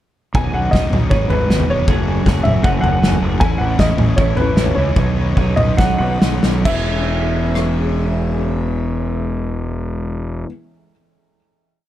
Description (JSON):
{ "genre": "indie rock", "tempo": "133-157 BPM", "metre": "4/4", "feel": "straight", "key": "E major", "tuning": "A4 = 440 Hz", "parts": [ { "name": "raw garage guitar", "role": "riff", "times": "0.3-10.5 s", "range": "G#2 to F#4", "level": "-26 LUFS", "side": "left 7 dB", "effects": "overdrive" }, { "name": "twelve-string electric guitar", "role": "riff", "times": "0.3-10.5 s", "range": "F#2 to B4", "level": "-24 LUFS", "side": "right 6 dB", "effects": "lush chorus, tape echo" }, { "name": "fuzz fingered electric bass", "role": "bass", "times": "0.3-10.4 s", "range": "E1 to C#2", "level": "-20 LUFS", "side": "equal", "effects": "overdrive" }, { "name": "loose indie drum kit", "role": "drums", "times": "0.3-7.7 s", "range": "crash cymbal, kick drum, rim click, snare drum, toms", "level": "-17 LUFS", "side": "equal", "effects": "none" }, { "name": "dark upright piano", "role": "melody", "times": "0.4-10.4 s", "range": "B4 to G#5", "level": "-22 LUFS", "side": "equal", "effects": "none" }, { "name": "string machine, full ensemble", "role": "sustained chords", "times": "3.4-10.5 s", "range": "C#4 to B5", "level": "-31 LUFS", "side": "equal", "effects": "phaser, ensemble chorus" } ], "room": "studio ambience", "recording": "dark, warm production", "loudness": "-14 LUFS", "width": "side -12 dB against mid", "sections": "0.4-6.7 pre-chorus; 6.7-10.2 final chord", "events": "slowing down 3.4-6.7; drum fill 5.8-6.7", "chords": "0.4 Badd9; 1.1 G#m7; 1.9 F#madd9; 3.4 Amaj7; 5.0 Badd9; 6.7 E6" }